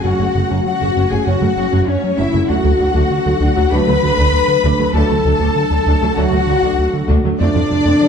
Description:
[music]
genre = cinematic, hybrid orchestral and electronic film score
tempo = 98 BPM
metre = 4/4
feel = straight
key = unclear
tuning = A4 = 442 Hz
[part]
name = rich symphonic violin section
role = melody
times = 0.0-8.1 s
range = C#5 to B5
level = -27 LUFS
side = left 5 dB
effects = none
[part]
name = warm studio violin section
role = second line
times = 0.0-8.1 s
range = C#5 to B5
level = -23 LUFS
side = left 4 dB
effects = none
[part]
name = warm symphonic viola section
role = accompaniment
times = 0.0-7.9 s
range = C3 to D4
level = -23 LUFS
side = left 1 dB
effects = none
[part]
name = airy breathy pad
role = sustained chords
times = 0.0-8.1 s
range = C3 to A4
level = -24 LUFS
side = equal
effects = chorus
[part]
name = dark French horn section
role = sustained chords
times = 0.0-8.1 s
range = C#4 to B4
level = -21 LUFS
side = left 5 dB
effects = none
[part]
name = round analog bass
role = riff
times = 0.0-8.1 s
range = D2 to F#3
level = -19 LUFS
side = right 1 dB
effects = none
[part]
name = dark symphonic cello section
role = bass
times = 0.0-8.1 s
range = C#4 to B4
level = -20 LUFS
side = equal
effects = none
[part]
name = warm symphonic double bass section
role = bass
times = 0.0-7.9 s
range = F#1 to F2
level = -20 LUFS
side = right 2 dB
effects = none
[part]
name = clear trombone section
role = sustained chords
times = 0.1-7.6 s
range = F3 to C#4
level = -26 LUFS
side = right 5 dB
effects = none
[sound]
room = moderate scoring stage reverb, RT60 1.9 s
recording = dark, warm production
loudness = -13 LUFS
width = side -7 dB against mid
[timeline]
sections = 0.0-8.1 A section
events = none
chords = 0.0 F#m; 2.5 D; 7.4 F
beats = | 0.05 0.66 1.27 1.89 | 2.50 3.11 3.72 4.33 | 4.95 5.56 6.17 6.78 | 7.39 8.01

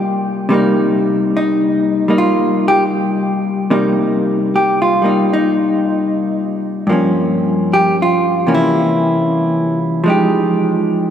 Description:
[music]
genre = jazz ballad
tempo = 75 BPM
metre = 4/4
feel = swing 66% on 8ths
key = C minor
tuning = A4 = 440 Hz
[part]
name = vintage hollow-body jazz guitar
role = solo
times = 0.0-11.1 s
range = G2 to G4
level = -13 LUFS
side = equal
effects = none
[sound]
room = wet cathedral reverb, RT60 5.1 s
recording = recorded in a church or concert hall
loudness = -13 LUFS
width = side -9 dB against mid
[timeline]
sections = 0.0-3.7 A section; 3.7-11.1 A section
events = none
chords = 0.0 Cm7; 6.9 Gm7b5; 8.5 C7b9; 10.1 Fm9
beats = | 0.50 1.30 2.10 2.90 | 3.70 4.50 5.29 6.09 | 6.88 7.68 8.47 9.26 | 10.06 10.85

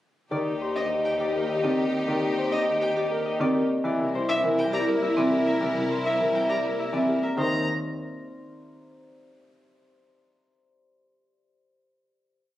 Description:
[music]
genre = classical, minimalist pattern music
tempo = 102 BPM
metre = 3/4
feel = straight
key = Eb major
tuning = A4 = 439 Hz
[part]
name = concert harp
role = melody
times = 0.3-9.2 s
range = G4 to E5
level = -28 LUFS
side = left 1 dB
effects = none
[part]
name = dark French horn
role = second line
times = 0.3-7.1 s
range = E4 to G4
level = -31 LUFS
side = left 1 dB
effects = none
[part]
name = warm baby grand piano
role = accompaniment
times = 0.3-7.6 s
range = C3 to Bb3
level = -32 LUFS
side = left 1 dB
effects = none
[part]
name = rich symphonic string section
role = sustained chords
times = 0.3-7.2 s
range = Eb4 to Bb4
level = -31 LUFS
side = left 1 dB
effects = none
[part]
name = warm symphonic double bass section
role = bass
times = 0.3-7.7 s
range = C2 to Eb2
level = -36 LUFS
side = right 1 dB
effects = none
[part]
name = marimba with medium mallets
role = arpeggios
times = 0.8-7.7 s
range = C4 to Bb4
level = -29 LUFS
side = equal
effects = none
[part]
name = warm violin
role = arpeggios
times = 0.8-7.7 s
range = Eb5 to Bb5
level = -32 LUFS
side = equal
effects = none
[sound]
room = moderate large studio reverb, RT60 1.5 s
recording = recorded on a phone in the room, club reverb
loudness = -23 LUFS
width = side -14 dB against mid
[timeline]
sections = 0.3-7.4 A section; 7.4-9.1 final chord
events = none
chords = 0.3 Ebmaj7; 3.8 C7; 7.4 Ebmaj7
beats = | 0.32 0.91 1.49 | 2.08 2.67 3.26 | 3.85 4.43 5.02 | 5.61 6.20 6.79 | 7.38 7.96 8.55

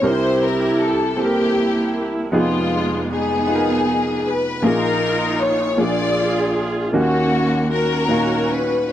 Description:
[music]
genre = gospel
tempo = 52 BPM (dotted quarters)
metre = 6/8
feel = straight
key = unclear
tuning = A4 = 440 Hz
[part]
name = warm studio string section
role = melody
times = 0.0-8.9 s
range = Ab3 to D5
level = -19 LUFS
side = left 1 dB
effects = none
[part]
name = clear upright piano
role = accompaniment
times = 0.0-8.9 s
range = F1 to F5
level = -20 LUFS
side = equal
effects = none
[sound]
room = little or no reverb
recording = dry, close 1970s-style studio recording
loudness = -16 LUFS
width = side -11 dB against mid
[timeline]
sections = 0.0-6.9 A section; 6.9-8.9 A section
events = none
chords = 0.0 C7; 2.3 Fm7b5; 4.6 Bb7sus4; 5.8 Bb7; 6.9 Ebm7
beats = | 0.03 1.18 | 2.33 3.48 | 4.64 5.79 | 6.94 8.09

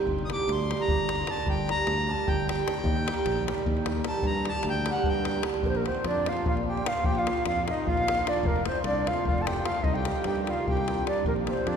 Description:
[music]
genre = balkan folk, Balkan wedding band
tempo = 301 BPM (eighths)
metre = 7/8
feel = straight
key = G minor, Bb major from 5.6 s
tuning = A4 = 440 Hz
[part]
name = cimbalom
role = accompaniment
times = 0.0-11.8 s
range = Eb3 to G4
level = -31 LUFS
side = right 4 dB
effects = none
[part]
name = modern bright fingered electric bass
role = bass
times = 0.1-11.8 s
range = F1 to G2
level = -32 LUFS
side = equal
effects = none
[part]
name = davul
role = percussion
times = 0.1-11.8 s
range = none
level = -31 LUFS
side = left 2 dB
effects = none
[part]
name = accordion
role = second line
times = 0.2-11.8 s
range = Bb3 to Eb6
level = -32 LUFS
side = equal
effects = none
[part]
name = breathy bright ney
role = melody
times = 5.7-11.8 s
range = Bb4 to A5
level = -29 LUFS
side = equal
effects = none
[sound]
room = wet cathedral reverb, RT60 6.1 s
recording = recorded in a church or concert hall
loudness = -25 LUFS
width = side -7 dB against mid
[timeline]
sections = 0.0-5.6 A section; 5.6-11.8 B section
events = accordion solo 0.0-5.6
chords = 0.1 Gm; 2.9 Eb; 4.2 Gm; 5.6 Bb; 8.4 F; 9.8 Cm; 11.3 Bb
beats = | 0.07 0.27 0.47 0.67 0.87 1.07 1.27 | 1.46 1.66 1.86 2.06 2.26 2.46 2.65 | 2.85 3.05 3.25 3.45 3.65 3.85 4.04 | 4.24 4.44 4.64 4.84 5.04 5.24 5.44 | 5.64 5.84 6.04 6.24 6.44 6.64 6.84 | 7.04 7.24 7.44 7.64 7.84 8.04 8.24 | 8.44 8.64 8.84 9.04 9.24 9.45 9.65 | 9.85 10.05 10.25 10.45 10.65 10.85 11.05 | 11.26 11.46 11.66

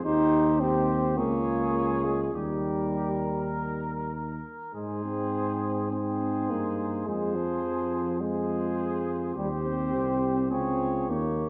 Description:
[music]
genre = classical, brass quintet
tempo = 104 BPM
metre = 4/4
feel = rubato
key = Ab major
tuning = A4 = 439 Hz
[part]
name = dark cornet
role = melody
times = 0.0-11.5 s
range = Bb4 to Db5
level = -39 LUFS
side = equal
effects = none
[part]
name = dark trumpet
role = second line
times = 0.0-11.5 s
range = G4 to Bb4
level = -39 LUFS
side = equal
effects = none
[part]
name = clear euphonium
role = accompaniment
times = 0.0-11.5 s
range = F3 to Eb4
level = -31 LUFS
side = equal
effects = none
[part]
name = warm French horn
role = accompaniment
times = 0.0-11.5 s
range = Eb4 to G4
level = -38 LUFS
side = equal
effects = none
[part]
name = mellow tuba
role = bass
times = 0.0-11.5 s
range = C2 to Ab2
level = -34 LUFS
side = equal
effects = none
[sound]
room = wet recital hall reverb, RT60 1.7 s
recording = nothing above 7.6 kHz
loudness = -28 LUFS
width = mono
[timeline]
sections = 0.0-11.5 A section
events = none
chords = 0.0 Cm/Eb; 1.2 Db; 2.3 Eb; 4.7 Ab; 7.1 Fm; 9.4 Cm/Eb; 10.5 Db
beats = | 0.04 0.60 1.17 1.75 | 2.35 2.94 3.55 4.14 | 4.74 5.33 5.91 6.49 | 7.06 7.63 8.20 8.77 | 9.35 9.93 10.51 11.09

